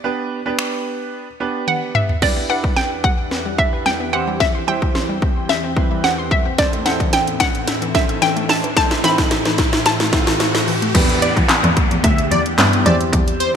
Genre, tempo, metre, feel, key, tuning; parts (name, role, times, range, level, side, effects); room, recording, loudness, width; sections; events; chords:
dance-pop; 110 BPM; 4/4; straight; A4 = 440 Hz
clear baby grand piano; accompaniment; 0.0-13.6 s; E3 to C5; -24 LUFS; right 4 dB; wide subtle chorus, sidechain pumping
house drum kit; drums; 0.6-13.5 s; crash cymbal, finger snaps, handclaps, hi-hat, kick drum, snare drum, toms; -18 LUFS; equal; overdrive, gated reverb
hollow square pluck; melody; 1.7-10.6 s; D5 to B5; -20 LUFS; equal; chorus, ping-pong delay
glassy FM pad; sustained chords; 2.9-13.6 s; E2 to G5; -26 LUFS; left 2 dB; ensemble chorus, built-in reverb, sidechain pumping
wide unison pluck; arpeggios; 2.2-10.9 s; E3 to C6; -29 LUFS; left 3 dB; sidechain pumping, ping-pong delay
riser and downlifter; sound effects; 4.0-13.6 s; -26 LUFS; equal
rich cello; bass; 10.9-13.3 s; D2 to E3; -19 LUFS; equal; sidechain pumping
plucky unison lead; melody; 11.2-13.5 s; C5 to E5; -21 LUFS; left 1 dB; sidechain pumping, ping-pong delay
light reverb; bright 1980s-style digital production; -15 LUFS; side -7 dB against mid
0.0-2.2 A section; 2.2-10.9 B section; 10.9-13.6 C section
drum fill 1.7-2.2, 2.2-10.9; build-up 2.2-10.9; riser 4.0-10.9; drop 10.9-13.6
0.0 G; 2.2 Em7; 4.1 C/E; 6.6 Am; 10.9 Em7; 12.9 C/E